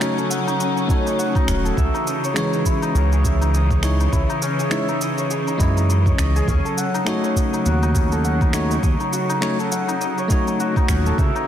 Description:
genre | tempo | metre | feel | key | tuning
organic downtempo | 102 BPM | 4/4 | swing 57% on 16ths | unclear | A4 = 439 Hz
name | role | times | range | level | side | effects
bell-like tine electric piano | accompaniment | 0.0-11.2 s | E3 to D#5 | -25 LUFS | left 2 dB | sidechain pumping, ping-pong delay
clear symphonic string section | sustained chords | 0.0-11.5 s | C#3 to C#4 | -26 LUFS | equal | sidechain pumping
santur | arpeggios | 0.0-11.5 s | C#4 to F#5 | -24 LUFS | left 1 dB | ping-pong delay
electronic finger snaps and cabasa | drums | 0.0-11.5 s | none | -30 LUFS | right 1 dB | overdrive, soft clipping on snare
electronic kick drum | drums | 0.9-11.3 s | none | -20 LUFS | equal | none
smooth synth bass | bass | 1.5-11.3 s | D#1 to F#2 | -19 LUFS | equal | sidechain pumping
room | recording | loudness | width
moderate lush hall reverb, RT60 1.6 s | dense, heavily limited modern master | -17 LUFS | side -10 dB against mid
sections
0.0-11.5 A section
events
none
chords
0.0 D#m7b5; 1.8 C#madd9; 6.5 D#m7b5

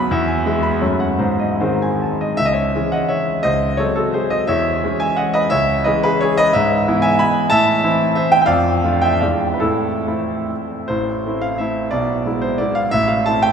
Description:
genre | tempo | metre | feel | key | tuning
classical, romantic triple-time dance for piano with dotted rhythms | 130-196 BPM | 3/4 | rubato | C# minor, A minor from 6.5 s | A4 = 438 Hz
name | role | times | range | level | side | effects
clear concert grand piano | solo | 0.0-13.5 s | A1 to B5 | -15 LUFS | equal | none
room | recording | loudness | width
wet cathedral reverb, RT60 7.0 s | recorded in a church or concert hall | -15 LUFS | side -7 dB against mid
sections
0.0-2.4 A section; 2.4-10.9 B section; 10.9-13.5 C section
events
none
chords
0.1 E; 0.8 F#m; 1.2 G#; 2.4 C#m; 3.4 G#7/C#; 4.5 C#m/E; 5.5 C#m; 6.5 E/G#; 7.5 Am; 8.5 Dm/F; 9.2 E7b9; 9.6 Am; 11.9 E7/B; 12.9 Am

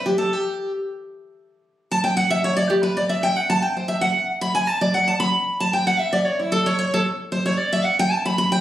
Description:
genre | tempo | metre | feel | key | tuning
bluegrass | 227 BPM | 4/4 | straight | G major | A4 = 440 Hz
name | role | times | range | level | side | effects
picked steel-string acoustic guitar | solo | 0.0-8.6 s | E4 to B5 | -19 LUFS | equal | none
room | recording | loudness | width
wet studio reverb, RT60 0.6 s | recorded on a phone in the room, studio reverb | -19 LUFS | side -13 dB against mid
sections
0.0-8.6 A section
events
steel-string acoustic guitar solo 0.0-8.6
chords
none

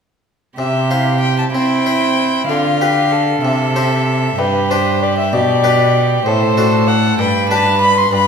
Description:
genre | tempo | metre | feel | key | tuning
classical, baroque-style sonata movement with continuo | 64 BPM (dotted quarters) | 6/8 | straight | C major | A4 = 440 Hz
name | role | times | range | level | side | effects
warm violin | melody | 0.6-8.3 s | B4 to C6 | -17 LUFS | left 4 dB | none
warm violin | second line | 0.6-8.3 s | E4 to B4 | -19 LUFS | right 4 dB | none
harpsichord | accompaniment | 0.6-8.3 s | G2 to C5 | -20 LUFS | equal | none
rich cello | bass | 0.6-8.3 s | G2 to C4 | -17 LUFS | right 1 dB | none
room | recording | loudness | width
wet recital hall reverb, RT60 1.7 s | minimal, uncompressed stereo recording | -12 LUFS | side -6 dB against mid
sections
0.6-8.3 A section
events
none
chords
0.6 C; 2.5 G7/D; 3.4 C; 4.4 G; 6.3 D7/A; 7.2 G

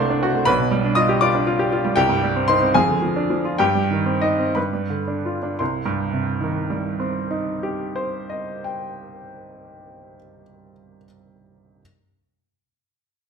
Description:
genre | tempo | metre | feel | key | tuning
classical, virtuoso piano study | 55-82 BPM (dotted quarters) | 6/8 | rubato | C minor | A4 = 440 Hz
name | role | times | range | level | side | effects
clear baby grand piano | solo | 0.0-11.8 s | B1 to Eb6 | -19 LUFS | equal | none
room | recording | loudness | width
wet large studio reverb, RT60 1.3 s | none | -19 LUFS | side -6 dB against mid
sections
0.0-5.6 A section; 5.6-9.6 B section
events
slowing down 1.2-5.6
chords
0.5 G7/B; 2.0 Cm; 2.8 Ddim/F; 3.6 Cm/G; 4.6 G7; 5.6 Cm

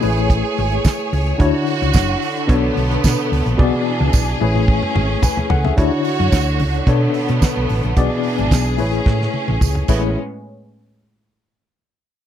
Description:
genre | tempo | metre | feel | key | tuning
disco | 109 BPM | 4/4 | straight | A major | A4 = 440 Hz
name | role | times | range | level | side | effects
tine electric piano | accompaniment | 0.0-10.2 s | B2 to G#5 | -21 LUFS | left 5 dB | overdrive, fast stereo tremolo
clear studio string section | sustained chords | 0.0-10.2 s | A2 to C#5 | -22 LUFS | right 3 dB | none
hollow-body short-scale fingered electric bass | bass | 0.0-10.1 s | F#1 to B2 | -19 LUFS | right 1 dB | none
damped 70s drum kit | drums | 0.0-10.0 s | crash cymbal, hi-hat, kick drum, snare drum, toms | -16 LUFS | right 1 dB | none
tambourine | percussion | 0.8-10.1 s | none | -30 LUFS | right 19 dB | none
room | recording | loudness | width
little or no reverb | dry, close 1970s-style studio recording | -15 LUFS | side -10 dB against mid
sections
0.0-5.8 A section; 5.8-10.2 B section; 10.2-12.3 C section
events
drum fill 3.6-5.8, 9.1-10.2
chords
0.0 Amaj9; 1.4 Dmaj7; 2.5 Bm7; 3.6 E7/B; 4.4 Amaj9; 5.8 Dmaj7; 6.9 Bm7; 8.0 E7/B; 8.8 Amaj9; 10.2 N.C.

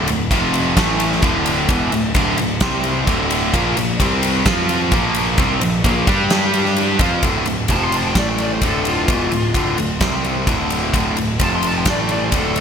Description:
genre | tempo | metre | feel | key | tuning
hard rock | 130 BPM | 4/4 | straight | D minor | A4 = 440 Hz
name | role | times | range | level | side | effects
cranked stack guitar | riff | 0.0-12.6 s | D2 to G4 | -22 LUFS | left 9 dB | overdrive
distorted electric guitar | riff | 0.0-12.6 s | D2 to G4 | -22 LUFS | right 9 dB | overdrive
tight distorted guitar | riff | 0.0-7.2 s | D2 to G4 | -23 LUFS | right 1 dB | distortion
fuzz picked electric bass | bass | 0.0-12.6 s | D1 to G2 | -24 LUFS | equal | overdrive
huge arena drum kit | drums | 0.1-12.6 s | kick drum, ride cymbal, snare drum | -20 LUFS | equal | none
smooth overdriven lead guitar | melody | 7.7-12.6 s | F4 to C6 | -23 LUFS | left 2 dB | digital delay
room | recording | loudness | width
moderate lush hall reverb, RT60 2.0 s, small room ambience | bright 1980s-style digital production | -15 LUFS | side -7 dB against mid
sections
0.0-7.2 A section; 7.2-12.6 B section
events
lead electric guitar solo 7.2-12.6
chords
0.3 F5; 0.8 A5; 1.2 D5; 2.6 C5; 3.1 D5; 3.5 Bb5; 4.0 C5; 4.5 F5; 4.9 Bb5; 6.1 G5; 7.0 F5; 7.2 D5; 7.7 F5; 8.2 A5; 8.6 Dm; 10.0 C5; 10.5 D5; 11.4 F5; 11.9 A5

